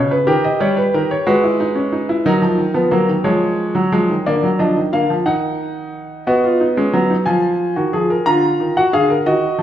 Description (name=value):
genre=classical, baroque-style 3-part fugue for grand piano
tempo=60 BPM (dotted quarters)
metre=6/8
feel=straight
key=unclear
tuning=A4 = 442 Hz
part: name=clear concert grand piano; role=solo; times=0.0-9.6 s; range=C#3 to A#5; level=-14 LUFS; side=equal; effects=none
room=wet recital hall reverb, RT60 1.4 s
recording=recorded in a church or concert hall, faint mains hum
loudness=-14 LUFS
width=side -11 dB against mid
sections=0.0-6.3 A section; 6.3-9.6 B section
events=none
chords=0.3 D#; 1.3 G#m; 2.3 D#m; 3.3 D#m11; 4.3 A#/D; 5.3 D#m; 6.3 B; 7.3 D#sus24; 8.3 A#7/D